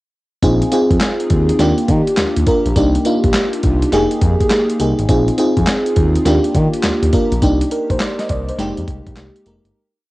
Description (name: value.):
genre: R&B, new jack swing.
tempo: 103 BPM.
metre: 4/4.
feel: swing 65% on 16ths.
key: Eb major.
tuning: A4 = 440 Hz.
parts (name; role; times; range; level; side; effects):
FM electric piano with soft pad layer; accompaniment; 0.4-9.8 s; Ab3 to Eb5; -16 LUFS; equal; chorus, cassette tape.
smooth gliding synth bass; bass; 0.4-9.7 s; F1 to Eb3; -18 LUFS; equal; none.
dusty soul sampler-style drum kit; drums; 0.4-9.7 s; handclaps, hi-hat, kick drum, snare drum; -19 LUFS; equal; overdrive, vintage 12-bit sampler grit, cassette tape.
room: light reverb, digital ambience.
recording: home recording on cassette.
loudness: -13 LUFS.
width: side -19 dB against mid.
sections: 0.4-9.7 verse.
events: fade-out 7.4-9.7.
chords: 0.4 Bb7sus4; 1.6 Ebmaj9; 2.8 Cm9; 3.9 Fm11; 5.1 Bb7sus4; 6.3 Ebmaj9; 7.4 Cm9; 8.6 Fm11.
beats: | 0.43 1.01 1.59 2.18 | 2.76 3.34 3.92 4.51 | 5.09 5.67 6.25 6.84 | 7.42 8.00 8.58 9.17.